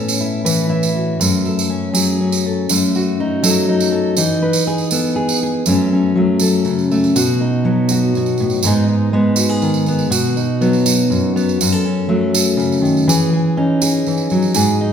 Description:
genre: acoustic folk duo or small band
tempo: 121 BPM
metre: 3/4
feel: straight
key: F# dorian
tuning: A4 = 440 Hz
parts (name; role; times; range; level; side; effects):
- fingerpicked steel-string acoustic guitar; accompaniment; 0.0-14.9 s; F#2 to B4; -14 LUFS; left 1 dB; none
- tambourine; percussion; 0.1-14.7 s; none; -21 LUFS; right 6 dB; none
room: wet recital hall reverb, RT60 1.4 s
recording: recorded in a church or concert hall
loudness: -14 LUFS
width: side -8 dB against mid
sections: 0.0-5.7 A section; 5.7-14.9 B section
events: none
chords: 0.0 Aadd9; 1.2 F#m; 2.7 F#m6; 4.2 Emaj7; 5.7 F#m; 7.1 B; 8.6 G#m; 10.1 B; 11.6 F#m; 13.1 C#madd9/E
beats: 0.21 0.70 | 1.20 1.70 2.19 | 2.69 3.19 3.68 | 4.18 4.67 5.17 | 5.66 6.16 6.65 | 7.15 7.64 8.14 | 8.63 9.13 9.62 | 10.12 10.61 11.10 | 11.60 12.09 12.59 | 13.08 13.57 14.07 | 14.56

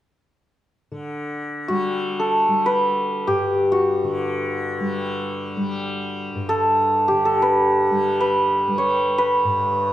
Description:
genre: indian classical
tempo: free time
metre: none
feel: none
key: G raga yaman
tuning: A4 = 440 Hz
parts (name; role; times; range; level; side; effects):
- tanpura; drone; 0.9-9.9 s; G2 to G3; -27 LUFS; left 1 dB; none
- santur; melody; 1.7-9.9 s; F#4 to C#5; -19 LUFS; equal; none
room: light reverb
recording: dark, warm production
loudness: -18 LUFS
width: side -13 dB against mid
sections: 0.9-9.9 A section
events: none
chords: none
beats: free time

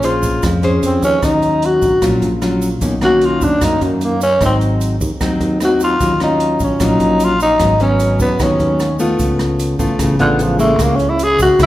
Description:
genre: bossa nova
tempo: 150 BPM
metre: 4/4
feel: straight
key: Eb minor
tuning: A4 = 441 Hz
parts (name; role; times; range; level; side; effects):
- growling tenor saxophone; melody; 0.0-11.7 s; D3 to Ab4; -14 LUFS; equal; none
- nylon-string guitar; accompaniment; 0.0-11.7 s; F#2 to C5; -17 LUFS; left 1 dB; none
- fingered electric bass; bass; 0.0-11.7 s; Ab1 to F#2; -20 LUFS; equal; none
- open jazz drum kit; drums; 0.0-11.7 s; hi-hat, kick drum, rim click; -23 LUFS; equal; none
- egg shaker; percussion; 0.0-11.7 s; none; -34 LUFS; right 4 dB; none
room: wet recital hall reverb, RT60 1.5 s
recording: recorded in a church or concert hall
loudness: -12 LUFS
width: side -15 dB against mid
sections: 0.0-1.2 A section; 1.2-11.7 A section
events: tenor saxophone solo 0.0-11.7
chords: 0.0 Bbm9; 1.2 Ebm9; 2.8 Bmaj9; 4.4 Ab7; 6.0 Ebm9; 7.6 Abm7; 9.2 Db7alt; 10.8 Dbm6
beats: 0.03 0.43 0.83 | 1.22 1.62 2.02 2.42 | 2.82 3.22 3.62 4.01 | 4.41 4.81 5.21 5.61 | 6.01 6.41 6.80 7.20 | 7.60 8.00 8.40 8.80 | 9.20 9.60 9.99 10.39 | 10.79 11.19 11.59

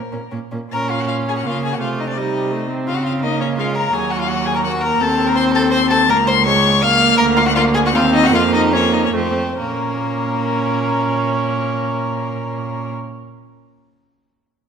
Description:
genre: quick classical-period movement for string quartet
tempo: 131-170 BPM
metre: 3/4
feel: rubato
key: Bb minor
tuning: A4 = 440 Hz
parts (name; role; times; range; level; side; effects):
- rich violin; melody; 0.0-12.9 s; Bb4 to F6; -20 LUFS; left 7 dB; none
- warm violin; second line; 0.1-12.9 s; Bb3 to F5; -22 LUFS; left 2 dB; none
- rich viola; accompaniment; 0.1-12.9 s; Gb3 to Db4; -20 LUFS; right 1 dB; none
- rich cello; bass; 0.1-12.9 s; Db2 to Db3; -22 LUFS; right 4 dB; none
room: moderate scoring stage reverb, RT60 1.8 s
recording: minimal, uncompressed stereo recording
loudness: -15 LUFS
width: side -6 dB against mid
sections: 0.7-9.6 A section; 9.6-12.2 B section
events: slowing down 6.6-9.6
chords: 0.0 Bbm; 1.8 Adim/C; 2.9 Bbm/Db; 3.9 Ebmadd11; 5.0 Adim/Eb; 6.1 Bbm/Db; 7.2 Bb/D; 7.9 Ebm69; 8.3 Bb5/F; 9.1 F; 9.6 Bbm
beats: 0.32 | 0.71 1.08 1.45 | 1.80 2.17 2.53 | 2.88 3.24 3.59 | 3.94 4.30 4.65 | 5.01 5.37 5.73 | 6.10 6.46 6.82 | 7.19 7.56 7.94 | 8.33 8.72 9.14 | 9.59 10.02 10.45 | 10.88 11.30 11.73

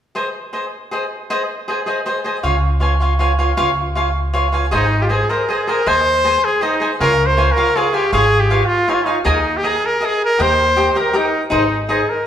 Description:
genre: mexican folk, mariachi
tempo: 158 BPM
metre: 3/4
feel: straight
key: Ab major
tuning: A4 = 442 Hz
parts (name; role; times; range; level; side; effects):
- cavaquinho; accompaniment; 0.1-12.0 s; Eb4 to Ab5; -18 LUFS; equal; none
- upright bass; bass; 2.4-12.0 s; Ab1 to Eb2; -20 LUFS; equal; none
- bright trumpet; melody; 4.7-12.3 s; Eb4 to C5; -16 LUFS; equal; none
room: wet large studio reverb, RT60 1.5 s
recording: band playing live in one room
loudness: -14 LUFS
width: side -9 dB against mid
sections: 0.1-4.7 A section; 4.7-12.3 B section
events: none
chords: 0.1 Ab; 2.4 Db; 4.7 Ab; 7.0 Db; 9.3 Ebsus4; 10.4 Eb; 11.5 Ab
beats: | 0.14 0.53 0.91 | 1.30 1.68 2.06 | 2.44 2.82 3.20 | 3.58 3.97 4.35 | 4.73 5.11 5.49 | 5.87 6.25 6.62 | 7.00 7.37 7.75 | 8.13 8.50 8.88 | 9.26 9.64 10.02 | 10.39 10.77 11.14 | 11.51 11.89 12.26

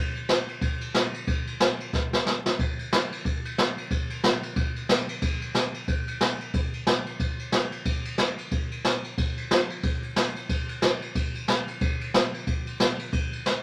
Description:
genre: rock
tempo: 182 BPM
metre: 4/4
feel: swing 60% on 8ths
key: none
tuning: none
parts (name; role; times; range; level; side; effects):
- jazz brush drum kit; drums; 0.2-13.5 s; kick drum, ride cymbal, snare drum; -27 LUFS; equal; none
room: moderate club reverb, RT60 0.5 s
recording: vinyl crackle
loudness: -27 LUFS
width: mono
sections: 0.0-2.6 A section; 2.6-13.6 B section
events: drum fill 1.9-2.6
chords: none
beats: 0.28 0.61 0.94 | 1.27 1.60 1.93 2.26 | 2.58 2.91 3.24 3.57 | 3.90 4.23 4.56 4.89 | 5.22 5.55 5.88 6.21 | 6.54 6.87 7.20 7.53 | 7.85 8.18 8.51 8.84 | 9.17 9.50 9.83 10.16 | 10.49 10.82 11.15 11.48 | 11.81 12.14 12.46 12.79 | 13.12 13.45

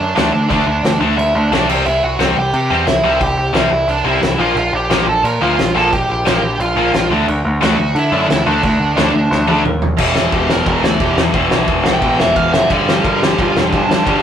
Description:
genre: punk rock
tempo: 177 BPM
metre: 4/4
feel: straight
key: unclear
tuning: A4 = 440 Hz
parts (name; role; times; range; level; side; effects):
- high-gain lead guitar; melody; 0.0-14.2 s; D4 to Bb5; -18 LUFS; right 1 dB; distortion
- growling picked electric bass; bass; 0.0-14.2 s; E1 to D3; -19 LUFS; equal; overdrive
- tight distorted guitar; riff; 0.2-14.2 s; E2 to D4; -19 LUFS; left 6 dB; distortion
- tight distorted guitar; riff; 0.2-14.2 s; E2 to D4; -21 LUFS; right 6 dB; distortion
- loose indie drum kit; drums; 0.2-14.1 s; crash cymbal, kick drum, ride cymbal, snare drum, toms; -18 LUFS; equal; none
room: moderate studio reverb, RT60 0.6 s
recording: rough rehearsal-room recording, warm saturation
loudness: -12 LUFS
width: side -9 dB against mid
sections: 0.0-10.0 A section; 10.0-14.2 B section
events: half time 0.0-10.0; drum fill 9.3-10.0; lead electric guitar solo 10.0-14.2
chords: 0.0 D5; 1.7 C; 4.4 Bb5; 7.1 D; 10.0 Em; 12.7 G5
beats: 0.16 | 0.50 0.84 1.18 1.52 | 1.86 2.20 2.54 2.87 | 3.21 3.55 3.89 4.23 | 4.57 4.91 5.25 5.58 | 5.92 6.26 6.60 6.94 | 7.28 7.62 7.95 8.29 | 8.63 8.97 9.31 9.65 | 9.99 10.32 10.66 11.00 | 11.34 11.68 12.02 12.36 | 12.70 13.04 13.38 13.72 | 14.06

